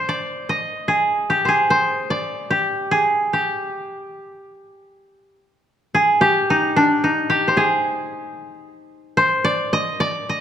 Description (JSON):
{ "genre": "japanese traditional, Japanese chamber music", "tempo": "73 BPM", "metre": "2/4", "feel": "rubato", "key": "G miyako bushi", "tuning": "A4 = 440 Hz", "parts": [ { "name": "koto", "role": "solo", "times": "0.0-10.4 s", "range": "D4 to Eb5", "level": "-17 LUFS", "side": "equal", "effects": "none" } ], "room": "moderate concert hall reverb, RT60 2.3 s", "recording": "minimal, uncompressed stereo recording", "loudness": "-17 LUFS", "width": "side -9 dB against mid", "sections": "0.0-5.1 A section; 5.1-10.4 B section", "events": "none", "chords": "none", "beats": "| 0.09 0.89 | 1.70 2.52 | 3.36 4.23 | 5.09 5.93 | 6.74 7.55 | 8.36 9.17 | 10.00" }